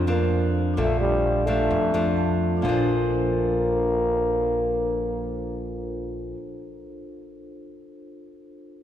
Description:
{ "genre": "bossa nova", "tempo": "129 BPM", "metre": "4/4", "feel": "straight", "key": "Bb major", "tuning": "A4 = 442 Hz", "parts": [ { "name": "nylon-string guitar", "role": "accompaniment", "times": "0.0-6.4 s", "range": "F2 to D4", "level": "-27 LUFS", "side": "left 2 dB", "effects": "none" }, { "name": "vibraphone with medium hard mallets", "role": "accompaniment", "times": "0.0-8.8 s", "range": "D4 to A5", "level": "-32 LUFS", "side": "right 1 dB", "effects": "none" }, { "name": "upright bass", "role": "bass", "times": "0.0-6.3 s", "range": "Bb1 to F2", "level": "-28 LUFS", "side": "right 1 dB", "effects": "none" }, { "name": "growling trombone", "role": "melody", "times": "0.1-6.3 s", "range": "G3 to Bb3", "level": "-25 LUFS", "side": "left 1 dB", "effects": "none" } ], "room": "wet church reverb, RT60 3.5 s", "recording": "recorded in a church or concert hall", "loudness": "-21 LUFS", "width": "side -10 dB against mid", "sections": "0.0-2.6 A section; 2.6-6.4 B section", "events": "vibraphone fill 1.9-2.6", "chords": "0.0 Bbmaj7" }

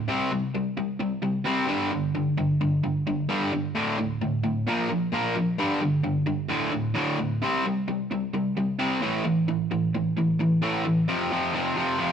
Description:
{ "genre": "rock", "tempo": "131 BPM", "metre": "4/4", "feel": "straight", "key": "unclear", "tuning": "A4 = 440 Hz", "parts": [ { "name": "crunchy overdriven guitar", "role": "solo", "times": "0.0-12.1 s", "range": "D2 to C4", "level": "-23 LUFS", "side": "equal", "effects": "none" } ], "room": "wet stone room reverb, RT60 1.0 s", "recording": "rough rehearsal-room recording", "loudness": "-23 LUFS", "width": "side -8 dB against mid", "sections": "0.0-11.1 A section; 11.1-12.1 B section", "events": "none", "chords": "0.1 C5; 1.7 G5; 3.8 D5; 4.7 Bb5; 5.6 G5; 6.5 D5; 7.4 C5; 9.0 A5; 11.1 F5" }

